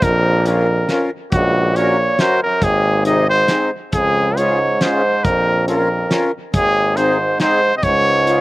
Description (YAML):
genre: alpine folk, alpine dance band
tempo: 138 BPM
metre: 3/4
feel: swing 54% on 8ths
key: Db major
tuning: A4 = 439 Hz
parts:
  - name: clear trumpet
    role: melody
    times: 0.0-8.4 s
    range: Gb4 to Eb5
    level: -16 LUFS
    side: equal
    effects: none
  - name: clear euphonium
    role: second line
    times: 0.0-8.4 s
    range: Db2 to C3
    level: -21 LUFS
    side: right 2 dB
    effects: slapback echo
  - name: warm tuba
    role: bass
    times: 0.0-8.4 s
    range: Ab1 to Db2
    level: -20 LUFS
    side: equal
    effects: none
  - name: loose indie drum kit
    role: drums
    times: 0.0-8.4 s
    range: hi-hat, kick drum, snare drum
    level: -20 LUFS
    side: equal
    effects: none
  - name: accordion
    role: accompaniment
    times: 0.5-8.4 s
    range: C4 to Bb4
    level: -21 LUFS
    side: left 2 dB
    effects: light tremolo tuning
room: little or no reverb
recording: recorded outdoors, with no room sound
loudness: -14 LUFS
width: side -18 dB against mid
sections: 0.0-8.4 A section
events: none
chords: 0.0 Bbm; 1.3 Gb/Bb; 2.6 Ab; 3.9 Db; 5.2 Bbm; 6.5 Ab; 7.8 Db